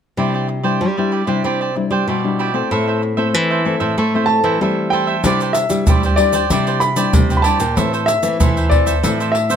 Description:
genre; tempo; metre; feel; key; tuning
samba and choro; 95 BPM; 4/4; straight; C major; A4 = 439 Hz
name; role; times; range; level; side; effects
cavaquinho; accompaniment; 0.2-9.6 s; E4 to E5; -22 LUFS; right 6 dB; none
nylon-string guitar; accompaniment; 0.2-9.6 s; A2 to E4; -21 LUFS; left 6 dB; none
nylon-string guitar; bass; 0.2-9.6 s; A2 to C4; -21 LUFS; right 1 dB; none
clear baby grand piano; melody; 4.3-9.6 s; D5 to B5; -19 LUFS; equal; none
tube shaker, surdo and pandeiro; percussion; 5.2-9.6 s; none; -17 LUFS; right 1 dB; none
room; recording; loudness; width
light reverb; close, detailed microphones; -14 LUFS; side -8 dB against mid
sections
0.2-5.2 A section; 5.2-9.6 B section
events
none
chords
0.2 Cadd9; 2.7 Am; 5.2 Cadd9; 7.8 Am

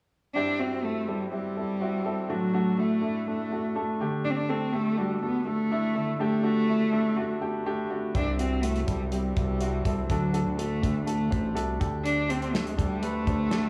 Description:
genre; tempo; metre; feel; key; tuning
piano-driven pop; 123 BPM; 4/4; straight; unclear; A4 = 440 Hz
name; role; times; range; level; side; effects
dark cello; melody; 0.3-13.7 s; F#3 to D4; -31 LUFS; equal; none
warm baby grand piano; accompaniment; 0.4-13.7 s; G2 to C5; -32 LUFS; equal; none
damped 70s drum kit; drums; 8.1-13.6 s; hi-hat, kick drum, snare drum; -32 LUFS; equal; none
fat analog bass; bass; 8.2-13.7 s; A1 to D2; -33 LUFS; equal; none
room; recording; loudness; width
moderate plate reverb, RT60 1.0 s, small room ambience; studio reverb; -28 LUFS; mono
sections
0.3-13.7 A section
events
none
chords
0.3 C; 2.3 D; 4.0 Gsus2/D; 8.2 C; 10.1 D; 11.8 Gsus2

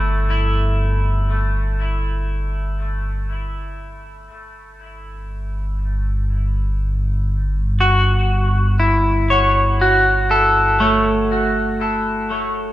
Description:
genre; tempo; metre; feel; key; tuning
ambient; free time; none; none; unclear; A4 = 440 Hz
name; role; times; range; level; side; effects
clean electric guitar; arpeggios; 0.0-12.7 s; A3 to C#5; -18 LUFS; equal; wide subtle chorus, dub echo
deep rumbling drone; bass; 0.0-12.7 s; G1; -20 LUFS; equal; built-in reverb
room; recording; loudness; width
wet spring reverb, RT60 2.6 s; echo-heavy mix, cassette tape; -16 LUFS; side -14 dB against mid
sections
0.0-12.7 A section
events
none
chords
0.0 Emadd11/G; 4.3 A7/G

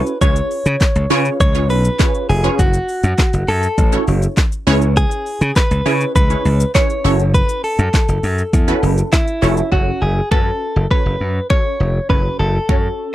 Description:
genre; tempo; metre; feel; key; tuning
dance-pop; 101 BPM; 4/4; straight; F# minor; A4 = 440 Hz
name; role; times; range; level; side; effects
direct-recorded clean electric guitar; melody; 0.0-13.1 s; E4 to C#5; -20 LUFS; equal; slapback echo
wide unison pluck; accompaniment; 0.0-13.1 s; C#4 to C#5; -21 LUFS; right 2 dB; phaser, sidechain pumping
deep house drum kit; drums; 0.1-12.8 s; finger snaps, handclaps, hi-hat, kick drum, shaker, snare drum; -16 LUFS; equal; none
glassy slap bass; bass; 0.2-12.9 s; E#1 to C#3; -16 LUFS; equal; sidechain pumping
room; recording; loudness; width
little or no reverb; dry, close 1970s-style studio recording; -13 LUFS; side -14 dB against mid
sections
0.0-9.7 A section; 9.7-13.1 B section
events
none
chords
0.2 C#7; 2.6 F#m7; 4.7 C#m7; 7.0 F#m7; 9.7 F#m

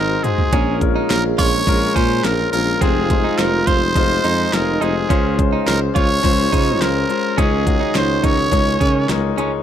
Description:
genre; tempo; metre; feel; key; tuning
piano-driven pop; 105 BPM; 4/4; straight; Db major; A4 = 441 Hz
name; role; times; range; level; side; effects
growling trumpet; melody; 0.0-9.1 s; Ab4 to Db5; -20 LUFS; right 3 dB; none
dark French horn section; second line; 0.0-9.3 s; Db3 to Ab4; -27 LUFS; right 10 dB; none
clear concert grand piano; accompaniment; 0.0-9.6 s; Ab2 to Eb5; -21 LUFS; left 9 dB; none
mellow tuba; bass; 0.0-9.6 s; F1 to Db3; -21 LUFS; equal; none
pop drum kit; drums; 0.2-9.5 s; hi-hat, kick drum, snare drum, toms; -20 LUFS; right 1 dB; none
direct-recorded clean electric guitar; riff; 0.5-9.5 s; C4 to F4; -25 LUFS; right 9 dB; none
room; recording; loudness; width
little or no reverb; dry, close 1970s-style studio recording; -14 LUFS; side -10 dB against mid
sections
0.0-9.6 A section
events
drum fill 0.0-0.5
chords
0.0 Ab7; 0.5 Bbm7; 2.8 Fm7; 5.1 Dbmaj7; 7.4 Dbsus2

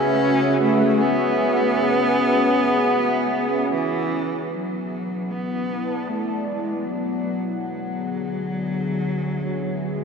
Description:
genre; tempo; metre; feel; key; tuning
ambient; 77 BPM; 4/4; straight; B dorian; A4 = 439 Hz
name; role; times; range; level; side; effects
rich cello; melody; 0.0-10.0 s; E3 to C#4; -22 LUFS; equal; tape echo
warm analog pad; sustained chords; 0.0-10.0 s; C#3 to A5; -23 LUFS; equal; chorus
room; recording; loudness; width
wet cathedral reverb, RT60 6.9 s; in a vast, echoing space, cassette tape; -20 LUFS; side -5 dB against mid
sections
0.0-4.5 A section; 4.5-10.0 B section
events
none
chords
0.0 Amaj7/C# (rootless); 4.5 Bm7; 7.6 Dmaj7

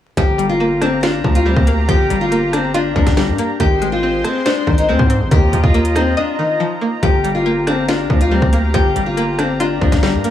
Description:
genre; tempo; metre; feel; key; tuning
hip hop, drill; 140 BPM; 4/4; half-time; G phrygian; A4 = 438 Hz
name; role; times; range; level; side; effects
nylon-string guitar; melody; 0.2-10.3 s; C4 to G4; -18 LUFS; left 3 dB; digital delay
string-like resonator pluck; accompaniment; 0.2-10.3 s; Eb3 to Eb5; -20 LUFS; left 1 dB; chorus
warm analog pad; sustained chords; 0.2-10.3 s; Ab3 to C6; -25 LUFS; right 2 dB; chorus, tremolo
distorted 808-style bass; bass; 0.2-10.2 s; G1 to Ab2; -19 LUFS; equal; distortion
drill drum kit; drums; 0.2-10.3 s; hi-hat, kick drum, rim click, snare drum; -17 LUFS; equal; none
room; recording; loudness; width
light reverb, digital ambience; vinyl crackle, small room ambience; -13 LUFS; side -11 dB against mid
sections
0.2-10.3 A section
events
break 6.2-7.0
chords
0.2 Gm7; 3.6 Ab; 5.3 Ebsus2; 7.0 Gm7

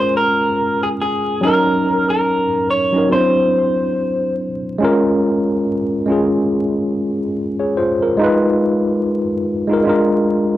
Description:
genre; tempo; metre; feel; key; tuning
hip hop; 71 BPM; 4/4; swing 57% on 16ths; Bb minor; A4 = 440 Hz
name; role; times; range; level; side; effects
electric guitar through a small old amp; melody; 0.0-4.3 s; Ab4 to Db5; -17 LUFS; equal; none
tine electric piano; accompaniment; 0.0-10.6 s; Gb3 to Db5; -16 LUFS; equal; overdrive, fast stereo tremolo
room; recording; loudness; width
light reverb, digital ambience; dry, gritty hardware recording, vinyl crackle; -14 LUFS; side -14 dB against mid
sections
0.0-10.6 A section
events
tine electric piano fill 10.3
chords
0.0 Bbm7; 1.4 Ebm7; 3.1 D9; 4.8 Db6; 8.2 Fm7b5; 9.9 Bb7

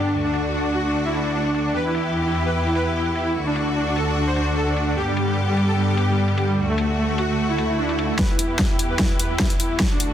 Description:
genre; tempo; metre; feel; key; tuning
heavy wobble dubstep; 149 BPM; 4/4; half-time; E minor; A4 = 440 Hz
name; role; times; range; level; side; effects
soft supersaw; melody; 0.0-10.1 s; G3 to C5; -23 LUFS; equal; dub echo
bright studio string section; sustained chords; 0.0-10.1 s; D2 to G4; -23 LUFS; equal; sidechain pumping, low-pass filter
dubstep drum kit; drums; 0.3-10.1 s; hi-hat, snare drum; -25 LUFS; equal; low-pass filter on hats, low-pass filter on snare
swell; sound effects; 7.5-8.2 s; none; -28 LUFS; right 1 dB; none
electronic kick drum; drums; 8.2-9.9 s; none; -22 LUFS; equal; distortion
room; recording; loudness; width
moderate lush hall reverb, RT60 2.2 s; dense, heavily limited modern master; -19 LUFS; side -10 dB against mid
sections
0.0-8.2 A section; 8.2-10.1 B section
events
swell 7.5-8.2; build-up 8.2-10.1; drum fill 8.2-10.1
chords
0.1 D; 1.7 Em; 3.4 D; 5.0 G; 6.6 D; 8.2 Em

